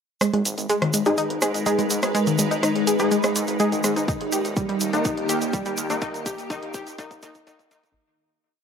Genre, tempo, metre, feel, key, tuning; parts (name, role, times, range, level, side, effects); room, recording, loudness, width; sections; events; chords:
melodic techno; 124 BPM; 4/4; straight; G# harmonic minor; A4 = 440 Hz
evolving wavetable pad; sustained chords; 0.9-7.9 s; D#3 to B4; -27 LUFS; left 1 dB; ensemble chorus, built-in reverb, phaser, sidechain pumping
analog pluck; arpeggios; 0.2-7.8 s; D#3 to G#4; -24 LUFS; equal; chorus, sidechain pumping, tape echo
deep house drum kit; drums; 0.2-7.9 s; hi-hat, rim click; -29 LUFS; equal; overdrive, sidechain pumping on hats
egg shaker; percussion; 0.2-7.9 s; -31 LUFS; right 3 dB
fat analog bass; bass; 0.3-7.9 s; D#1 to G#2; -32 LUFS; equal; tube saturation, sidechain pumping, high-pass filter
filtered dub chord stab; stabs; 1.1-7.9 s; D#3 to G#4; -27 LUFS; left 1 dB; chorus, sidechain pumping, tape echo
electronic kick drum; drums; 4.1-7.9 s; -28 LUFS; equal
moderate lush hall reverb, RT60 1.9 s, digital ambience; dry, gritty hardware recording, high-pass filter; -20 LUFS; side -7 dB against mid
0.2-8.0 build
build-up 0.2-8.0; filter sweep on synth pluck 0.2-8.0; drum fill 4.1-8.0; fade-out 5.4-8.0
0.2 G#m; 4.1 D#